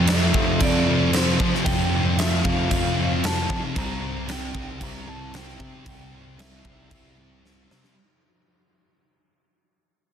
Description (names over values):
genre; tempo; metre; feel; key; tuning
rock, shoegaze and dream pop; 114 BPM; 4/4; straight; C mixolydian; A4 = 440 Hz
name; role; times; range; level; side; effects
electric guitar through a small old amp; melody; 0.0-7.7 s; C5 to Bb5; -31 LUFS; right 1 dB; tape echo
thick fuzz guitar; riff; 0.0-7.9 s; F2 to C4; -24 LUFS; equal; distortion, wide subtle chorus
growling picked electric bass; bass; 0.0-7.8 s; C2 to F3; -27 LUFS; equal; overdrive
huge arena drum kit; drums; 0.1-8.0 s; crash cymbal, kick drum, snare drum; -25 LUFS; equal; none
room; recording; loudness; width
studio ambience; dense, heavily limited modern master; -20 LUFS; side -8 dB against mid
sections
0.0-8.0 A section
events
fade-out 0.0-8.0; drum fill 7.4-8.0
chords
0.0 F5; 3.8 C